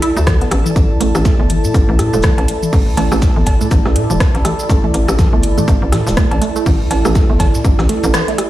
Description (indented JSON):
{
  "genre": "minimal techno",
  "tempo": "122 BPM",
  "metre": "4/4",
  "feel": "swing 59% on 16ths",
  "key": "unclear",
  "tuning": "A4 = 441 Hz",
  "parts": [
    { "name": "resonant blip pluck", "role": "riff", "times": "0.0-8.3 s", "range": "A3 to E4", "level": "-22 LUFS", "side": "right 4 dB", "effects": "chorus, phaser, sidechain pumping, ping-pong delay" },
    { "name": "big rock drum kit", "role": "drums", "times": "0.0-8.5 s", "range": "hi-hat, shaker, snare drum", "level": "-32 LUFS", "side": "right 1 dB", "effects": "sidechain pumping on hats, high-pass filter on hats, high-pass filter on snare, sidechain pumping on perc, high-pass filter on perc, high-pass filter on room" },
    { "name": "house drum kit", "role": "drums", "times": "0.0-8.5 s", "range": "hi-hat, rim click, shaker", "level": "-23 LUFS", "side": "right 1 dB", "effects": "none" },
    { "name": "warbly tape-like pad", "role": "texture", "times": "0.0-8.5 s", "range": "E4 to A5", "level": "-21 LUFS", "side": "right 1 dB", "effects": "chorus, built-in reverb, phaser, sidechain pumping" },
    { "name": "hollow knocking FM bass", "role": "bass", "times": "0.2-8.1 s", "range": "E1 to A2", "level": "-16 LUFS", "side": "equal", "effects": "sidechain pumping" },
    { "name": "electronic kick drum", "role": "drums", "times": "0.3-7.8 s", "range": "none", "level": "-13 LUFS", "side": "equal", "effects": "none" },
    { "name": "booming analog drum machine", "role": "percussion", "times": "0.3-8.5 s", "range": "cowbell, rim click, toms", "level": "-22 LUFS", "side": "left 2 dB", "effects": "digital delay" }
  ],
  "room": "light reverb",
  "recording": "played on a big sound system in a bare room, stone room reverb",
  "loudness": "-11 LUFS",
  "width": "side -14 dB against mid",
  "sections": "0.0-8.5 A section",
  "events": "band accent 8.1",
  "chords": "0.0 Asus4"
}